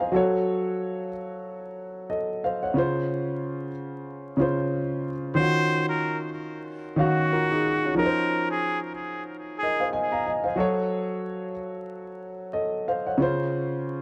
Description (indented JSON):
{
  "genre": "hip hop",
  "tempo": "92 BPM",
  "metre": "4/4",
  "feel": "swing 60% on 16ths",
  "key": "Db major",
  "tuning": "A4 = 440 Hz",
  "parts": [
    { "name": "dark concert grand piano", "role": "accompaniment", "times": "0.0-14.0 s", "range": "Db3 to Bb5", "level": "-28 LUFS", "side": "equal", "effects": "plate reverb" },
    { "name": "trumpet with straight mute", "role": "melody", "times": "5.4-9.9 s", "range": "Gb4 to C5", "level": "-30 LUFS", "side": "equal", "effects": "plate reverb, delay" }
  ],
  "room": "moderate studio reverb, RT60 0.6 s",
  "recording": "vinyl crackle",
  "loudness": "-26 LUFS",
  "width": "mono",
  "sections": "0.0-14.0 A section",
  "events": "none",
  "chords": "0.1 Gbm; 2.8 Dbmaj7; 5.4 Ebm9; 8.0 Dbmaj7/F; 10.6 Gbm; 13.2 Dbmaj7"
}